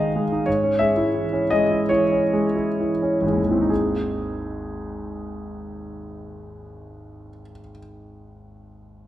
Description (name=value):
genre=classical, romantic character piece for solo piano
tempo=60-94 BPM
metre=4/4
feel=rubato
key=Ab major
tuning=A4 = 439 Hz
part: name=warm concert grand piano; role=solo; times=0.0-9.1 s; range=Ab1 to Ab5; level=-21 LUFS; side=equal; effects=none
room=wet recital hall reverb, RT60 1.4 s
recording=none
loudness=-19 LUFS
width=side -13 dB against mid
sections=0.0-3.7 A section; 3.7-9.1 B section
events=slowing down 0.0-3.7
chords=0.5 Dbm/Ab; 3.7 Ab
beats=| 0.46 1.14 1.89 2.76 | 3.69 4.50 5.35 6.21 | 7.06 7.89 8.73